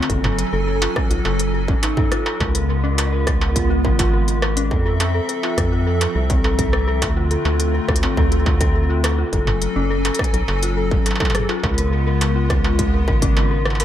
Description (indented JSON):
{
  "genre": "IDM",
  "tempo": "104 BPM",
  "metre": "4/4",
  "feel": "straight",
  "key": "unclear",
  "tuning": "A4 = 440 Hz",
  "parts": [
    { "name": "hollow soft pad", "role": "sustained chords", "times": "0.0-13.8 s", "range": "Db3 to Ab5", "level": "-24 LUFS", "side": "equal", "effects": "ensemble chorus, sidechain pumping" },
    { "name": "dark detuned synth bell", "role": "arpeggios", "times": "0.0-13.8 s", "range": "C4 to Bb4", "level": "-24 LUFS", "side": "left 3 dB", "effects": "chorus, tremolo, dub echo" },
    { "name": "industrial drum kit", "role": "drums", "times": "0.0-13.8 s", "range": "hi-hat, rim click, struck metal, toms", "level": "-25 LUFS", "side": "right 1 dB", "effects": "dub echo" },
    { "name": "rubbery square bass", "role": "bass", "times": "0.1-13.8 s", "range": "Gb1 to F2", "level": "-20 LUFS", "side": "equal", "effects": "none" },
    { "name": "electronic kick drum", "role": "drums", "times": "0.1-13.3 s", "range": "none", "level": "-21 LUFS", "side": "equal", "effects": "distortion" }
  ],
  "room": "light reverb",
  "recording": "echo-heavy mix",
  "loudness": "-16 LUFS",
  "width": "side -11 dB against mid",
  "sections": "0.0-13.8 A section",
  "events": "none",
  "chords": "0.1 Gbmadd9; 2.4 Db7; 4.7 Fmaj7; 7.0 Dm7; 9.3 Gbmadd9; 11.6 Db7",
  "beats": "| 0.10 0.67 1.25 1.83 | 2.40 2.98 3.56 4.13 | 4.71 5.29 5.87 6.44 | 7.02 7.60 8.17 8.75 | 9.33 9.90 10.48 11.06 | 11.63 12.21 12.79 13.37"
}